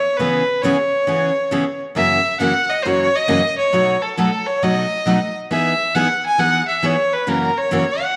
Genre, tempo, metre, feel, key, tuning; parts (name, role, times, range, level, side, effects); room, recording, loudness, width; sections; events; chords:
country; 136 BPM; 4/4; swing 66% on 8ths; E major; A4 = 440 Hz
clear fiddle; melody; 0.0-8.2 s; A4 to G#5; -20 LUFS; equal; slapback echo
picked steel-string acoustic guitar; accompaniment; 0.2-7.8 s; F#2 to G#4; -23 LUFS; equal
moderate echo chamber reverb, RT60 1.7 s, studio reverb; -18 LUFS; mono
0.0-8.2 A section
0.2 C#m7; 2.0 F#7; 3.7 B7; 5.5 Emaj7; 7.3 F#7